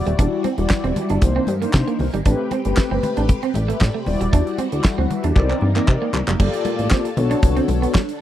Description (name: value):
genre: early-eighties boogie funk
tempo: 116 BPM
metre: 4/4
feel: straight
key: unclear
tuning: A4 = 440 Hz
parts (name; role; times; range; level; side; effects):
- mellow synth brass; accompaniment; 0.0-8.0 s; G3 to F#5; -23 LUFS; left 4 dB; chorus
- phased string machine; sustained chords; 0.0-8.2 s; C3 to B4; -30 LUFS; left 1 dB; ensemble chorus, phaser
- plucky analog bass; bass; 0.0-7.9 s; D#1 to C3; -21 LUFS; equal; none
- electric guitar at the edge of break-up; riff; 0.1-8.0 s; G3 to D4; -26 LUFS; right 8 dB; analog chorus
- damped 70s drum kit; drums; 0.1-8.2 s; crash cymbal, handclaps, hi-hat, kick drum, snare drum; -18 LUFS; equal; none
- congas; percussion; 0.4-8.1 s; none; -30 LUFS; left 4 dB; none
room: studio reverb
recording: dry, close 1970s-style studio recording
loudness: -17 LUFS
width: side -12 dB against mid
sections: 0.0-6.4 A section; 6.4-8.2 B section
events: drum fill 5.4-6.4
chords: 0.0 Em9; 1.2 Cm9; 2.3 Am9; 4.1 Em9; 5.4 Cm9; 6.4 Gm9; 7.2 Bm9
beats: | 0.19 0.71 1.22 1.74 | 2.26 2.78 3.29 3.81 | 4.33 4.84 5.36 5.88 | 6.40 6.91 7.43 7.95